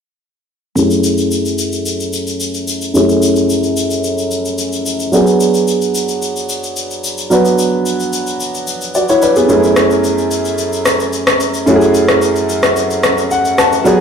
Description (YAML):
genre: amapiano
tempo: 110 BPM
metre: 4/4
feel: straight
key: F# minor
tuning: A4 = 438 Hz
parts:
  - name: clear baby grand piano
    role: accompaniment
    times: 0.8-14.0 s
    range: F#2 to A5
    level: -13 LUFS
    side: equal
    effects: low-pass filter
  - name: electronic shaker and rim click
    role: drums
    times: 0.8-14.0 s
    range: none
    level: -18 LUFS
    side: left 2 dB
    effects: none
room: light reverb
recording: played on a big sound system in a bare room, large studio reverb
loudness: -12 LUFS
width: side -7 dB against mid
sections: 0.8-14.0 A section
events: filter sweep on grand piano 0.8-14.0; grand piano fill 13.0-13.9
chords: 0.8 F#m9; 5.1 E9/F# (rootless); 9.5 F#m9